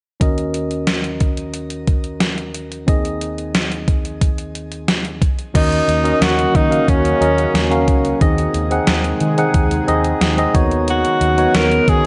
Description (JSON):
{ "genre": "1980s-style pop", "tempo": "90 BPM", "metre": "4/4", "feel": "straight", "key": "Eb minor", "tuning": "A4 = 440 Hz", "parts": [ { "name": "tine electric piano", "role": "accompaniment", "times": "0.2-12.1 s", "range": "Eb2 to Gb5", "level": "-22 LUFS", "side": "equal", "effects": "shimmer reverb" }, { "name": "gated 80s digital drum machine", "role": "drums", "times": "0.2-12.0 s", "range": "crash cymbal, hi-hat, kick drum, snare drum", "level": "-20 LUFS", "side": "equal", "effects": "gated reverb, gated reverb snare, overdrive" }, { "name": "breathy tenor saxophone", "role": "melody", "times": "5.6-12.1 s", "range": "Db4 to Bb4", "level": "-20 LUFS", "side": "equal", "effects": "delay, shimmer reverb" }, { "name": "lush unison pad", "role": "sustained chords", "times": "6.4-12.1 s", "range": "C3 to Ab4", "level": "-28 LUFS", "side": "equal", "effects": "none" }, { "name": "vintage muted fingered electric bass", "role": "bass", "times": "5.6-12.1 s", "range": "Db2 to Eb3", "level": "-23 LUFS", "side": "equal", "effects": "none" } ], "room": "moderate recital hall reverb, RT60 1.4 s, digital ambience", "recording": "nothing above 10.7 kHz", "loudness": "-17 LUFS", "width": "mono", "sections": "0.2-5.5 A section; 5.5-12.1 B section", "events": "none", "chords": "0.2 Ebm7; 2.9 Ab/Eb; 5.2 N.C.; 5.5 Ebm7; 8.2 Ab/Eb; 10.5 Badd9/D#" }